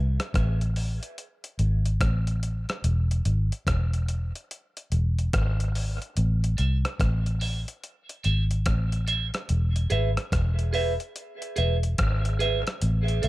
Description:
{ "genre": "dub reggae", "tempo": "72 BPM", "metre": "4/4", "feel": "swing 63% on 16ths", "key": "unclear", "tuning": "A4 = 442 Hz", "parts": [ { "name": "vintage muted fingered electric bass", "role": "bass", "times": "0.0-13.3 s", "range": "E1 to C2", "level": "-24 LUFS", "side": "equal", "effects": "none" }, { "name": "dusty soul sampler-style drum kit", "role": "drums", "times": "0.2-13.3 s", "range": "hi-hat, kick drum, rim click", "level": "-30 LUFS", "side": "equal", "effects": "none" }, { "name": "mellow tonewheel organ", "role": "accompaniment", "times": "6.4-9.4 s", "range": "A2 to E4", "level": "-67 LUFS", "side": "left 4 dB", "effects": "none" }, { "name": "clean electric guitar", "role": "accompaniment", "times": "6.6-13.3 s", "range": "G#4 to E5", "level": "-30 LUFS", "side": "right 3 dB", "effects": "harmonic tremolo, high-pass filter, dub echo" } ], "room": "little or no reverb", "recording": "none", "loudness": "-23 LUFS", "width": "side -18 dB against mid", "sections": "0.0-13.3 A section", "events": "break 0.0-6.2; filter sweep 2.8-9.5; kick muted 6.2-7.0", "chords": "0.0 N.C.; 2.8 E; 6.2 Am; 9.5 E" }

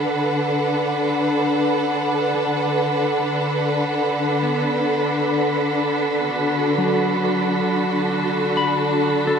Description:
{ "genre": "ambient", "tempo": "free time", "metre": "none", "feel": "none", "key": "D major", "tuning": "A4 = 440 Hz", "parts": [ { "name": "bright studio string section", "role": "sustained chords", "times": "0.0-9.4 s", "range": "D3 to A5", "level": "-19 LUFS", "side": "equal", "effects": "none" }, { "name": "wind-like tuned noise texture", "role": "texture", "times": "0.0-9.4 s", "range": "B5", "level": "-28 LUFS", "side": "right 4 dB", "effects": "built-in reverb" }, { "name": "semi-hollow electric guitar", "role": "arpeggios", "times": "4.4-9.4 s", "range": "F#3 to B5", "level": "-26 LUFS", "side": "equal", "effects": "spring reverb, diffuse ambient delay" } ], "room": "wet cathedral reverb, RT60 6.7 s", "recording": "in a vast, echoing space, nothing above 10.6 kHz", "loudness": "-18 LUFS", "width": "side -6 dB against mid", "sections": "0.0-9.4 A section", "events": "none", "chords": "0.0 D6" }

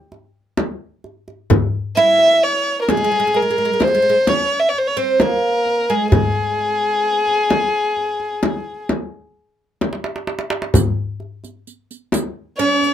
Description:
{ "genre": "Arabic maqam ensemble", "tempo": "130 BPM (eighths)", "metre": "10/8", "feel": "straight", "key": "unclear", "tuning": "A4 = 444 Hz", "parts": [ { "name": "darbuka", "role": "percussion", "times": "0.1-12.9 s", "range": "none", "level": "-21 LUFS", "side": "right 1 dB", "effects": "none" }, { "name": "frame drum", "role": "percussion", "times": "0.6-12.3 s", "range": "none", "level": "-19 LUFS", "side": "left 2 dB", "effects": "none" }, { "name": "dark violin", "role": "melody", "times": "2.0-12.9 s", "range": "Ab4 to E5", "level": "-16 LUFS", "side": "left 1 dB", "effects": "none" }, { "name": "oud", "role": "second line", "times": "2.0-12.9 s", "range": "Ab3 to E4", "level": "-22 LUFS", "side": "right 6 dB", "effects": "none" }, { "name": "riq", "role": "percussion", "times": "10.8-12.9 s", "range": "none", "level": "-28 LUFS", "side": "right 7 dB", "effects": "none" } ], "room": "light reverb", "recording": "close, detailed microphones", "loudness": "-16 LUFS", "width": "side -10 dB against mid", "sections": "0.0-12.9 A section", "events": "drum fill 9.8-10.7", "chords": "none" }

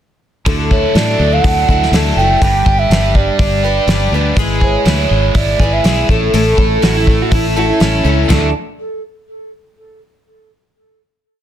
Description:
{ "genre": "folk rock and heartland rock", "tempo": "122 BPM", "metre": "4/4", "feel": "straight", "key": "D major", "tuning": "A4 = 440 Hz", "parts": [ { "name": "picked twelve-string acoustic guitar", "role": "accompaniment", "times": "0.5-8.5 s", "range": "A2 to B4", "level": "-19 LUFS", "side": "left 7 dB", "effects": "none" }, { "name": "overdriven electric guitar", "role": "riff", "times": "0.5-8.5 s", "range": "G2 to A4", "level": "-19 LUFS", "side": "right 2 dB", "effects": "none" }, { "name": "fingered electric bass", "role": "bass", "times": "0.5-8.5 s", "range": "F#1 to A2", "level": "-16 LUFS", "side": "equal", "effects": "none" }, { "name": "cloth-damped thuddy drum kit", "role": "drums", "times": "0.5-8.4 s", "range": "china cymbal, hi-hat, kick drum, snare drum, toms", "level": "-15 LUFS", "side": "equal", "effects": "none" }, { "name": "mellow round clay ocarina", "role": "melody", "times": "0.7-8.5 s", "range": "A4 to G5", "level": "-18 LUFS", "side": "right 5 dB", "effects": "tape echo" }, { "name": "electric slide guitar", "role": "second line", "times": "6.8-8.5 s", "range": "C#4 to F#4", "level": "-21 LUFS", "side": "right 8 dB", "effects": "none" } ], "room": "light reverb, small room ambience", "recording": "dense, heavily limited modern master", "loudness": "-10 LUFS", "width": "side -10 dB against mid", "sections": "0.5-8.3 verse; 8.3-10.3 final chord", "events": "none", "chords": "0.5 Dadd9; 2.4 G; 4.4 E/G#; 6.1 A; 8.3 Dadd9" }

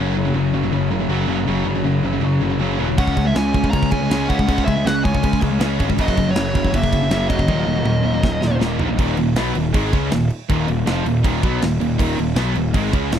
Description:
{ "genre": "heavy metal", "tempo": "160 BPM", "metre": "4/4", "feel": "straight", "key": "Eb minor", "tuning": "A4 = 441 Hz", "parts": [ { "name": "high-gain distorted guitar", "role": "riff", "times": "0.0-13.2 s", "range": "Eb2 to Db4", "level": "-24 LUFS", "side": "right 10 dB", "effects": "distortion" }, { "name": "sludgy distorted guitar", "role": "riff", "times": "0.0-13.2 s", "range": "Eb2 to Db4", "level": "-23 LUFS", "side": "left 9 dB", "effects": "overdrive" }, { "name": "tight distorted guitar", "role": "riff", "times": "0.0-13.2 s", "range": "Eb2 to Db4", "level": "-26 LUFS", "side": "equal", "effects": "distortion" }, { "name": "fuzz picked electric bass", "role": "bass", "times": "0.0-13.2 s", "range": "Eb1 to Db2", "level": "-23 LUFS", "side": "equal", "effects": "overdrive" }, { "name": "dark smooth lead guitar", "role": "melody", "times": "3.0-8.6 s", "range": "Db5 to Bb5", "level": "-26 LUFS", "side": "right 1 dB", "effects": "overdrive, tape echo" }, { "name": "bluesy overdriven lead guitar", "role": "second line", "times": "3.0-8.6 s", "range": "Gb3 to Db4", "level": "-27 LUFS", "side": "right 2 dB", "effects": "distortion" }, { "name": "tight metal drum kit", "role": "drums", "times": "3.0-13.2 s", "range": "crash cymbal, kick drum, snare drum, toms", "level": "-22 LUFS", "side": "right 1 dB", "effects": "none" } ], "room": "small room ambience", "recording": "dry, close 1970s-style studio recording", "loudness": "-16 LUFS", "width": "side -9 dB against mid", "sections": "0.0-9.0 A section; 9.0-13.2 B section", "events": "drum fill 7.5-9.0", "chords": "0.0 Gb5; 3.0 Db5; 6.0 Gb; 7.5 Ebm" }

